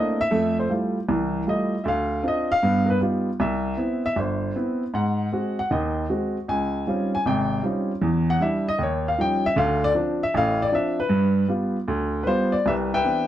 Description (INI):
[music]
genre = solo jazz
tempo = 156 BPM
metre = 4/4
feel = swing 67% on 8ths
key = C major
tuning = A4 = 440 Hz
[part]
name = warm upright piano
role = solo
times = 0.0-13.3 s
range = G1 to Ab5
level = -21 LUFS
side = equal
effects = none
[sound]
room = moderate large studio reverb, RT60 0.8 s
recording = dark, warm production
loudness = -21 LUFS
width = side -12 dB against mid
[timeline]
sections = 0.3-12.6 A section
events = upright piano solo 0.0-12.6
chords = 0.3 Fmaj9; 1.9 Dm7; 2.6 Gaug7; 3.4 Cmaj7; 4.9 Ab7; 6.5 Dbmaj9#11; 8.0 Em9; 8.8 Eb9; 9.6 Dm7; 11.1 G7; 12.6 Cmaj9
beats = | 0.31 0.70 1.08 1.47 | 1.85 2.24 2.62 3.01 | 3.39 3.78 4.17 4.55 | 4.93 5.32 5.71 6.09 | 6.48 6.86 7.25 7.63 | 8.02 8.40 8.79 9.17 | 9.56 9.95 10.33 10.71 | 11.10 11.49 11.87 12.26 | 12.64 13.03